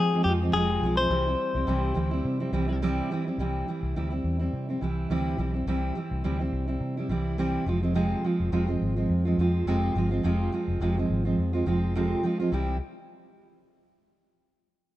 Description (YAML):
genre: acoustic pop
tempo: 105 BPM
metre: 4/4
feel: swing 55% on 16ths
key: C major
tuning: A4 = 440 Hz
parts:
  - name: direct-recorded clean electric guitar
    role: melody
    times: 0.0-2.8 s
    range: G4 to C5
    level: -28 LUFS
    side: left 4 dB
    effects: none
  - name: fingerpicked steel-string acoustic guitar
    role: accompaniment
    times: 0.0-12.8 s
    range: F2 to F4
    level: -27 LUFS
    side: right 2 dB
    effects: none
  - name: vintage muted fingered electric bass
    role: bass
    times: 0.0-12.8 s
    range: F1 to F3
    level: -28 LUFS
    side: left 1 dB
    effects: none
room: light reverb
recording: none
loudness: -24 LUFS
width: side -15 dB against mid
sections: 0.0-3.4 A section; 3.4-12.5 B section; 12.5-14.8 C section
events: none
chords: 0.0 Fm; 1.1 C; 7.7 Fm; 12.5 C